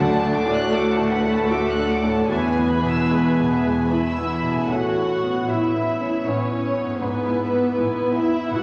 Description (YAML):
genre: cinematic, emotional film score for orchestra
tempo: 74-79 BPM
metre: 3/4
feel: rubato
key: A major from 4.7 s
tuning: A4 = 440 Hz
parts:
  - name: warm chamber violin section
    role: melody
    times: 0.0-8.6 s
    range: B4 to G#5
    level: -37 LUFS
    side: equal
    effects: none
  - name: warm studio violin section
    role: second line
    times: 0.0-8.6 s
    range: B4 to F#6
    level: -30 LUFS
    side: equal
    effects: none
  - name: clear grand piano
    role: accompaniment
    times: 0.0-8.6 s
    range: D2 to F#4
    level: -26 LUFS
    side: equal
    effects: none
  - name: dark studio viola section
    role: accompaniment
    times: 0.0-8.6 s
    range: E3 to B4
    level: -27 LUFS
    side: equal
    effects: none
  - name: dark French horn section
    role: sustained chords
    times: 0.0-4.4 s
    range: A3 to F#4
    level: -30 LUFS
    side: equal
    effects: none
  - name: concert harp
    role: arpeggios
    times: 0.0-8.6 s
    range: G#2 to E5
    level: -32 LUFS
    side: equal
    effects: none
  - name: dark studio double bass section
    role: bass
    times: 0.0-8.6 s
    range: G#1 to E2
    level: -35 LUFS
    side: equal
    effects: none
  - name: rich studio cello section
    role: bass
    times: 0.0-8.6 s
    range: G#2 to B4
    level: -35 LUFS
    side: equal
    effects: none
room: wet scoring stage reverb, RT60 1.7 s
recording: none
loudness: -21 LUFS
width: mono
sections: 0.0-4.7 A section; 4.7-8.6 B section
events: none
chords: 0.0 D; 2.3 E; 4.7 Aadd9; 7.0 E/G#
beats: 0.73 1.50 | 2.30 3.11 3.92 | 4.71 5.49 6.26 | 7.02 7.78 8.54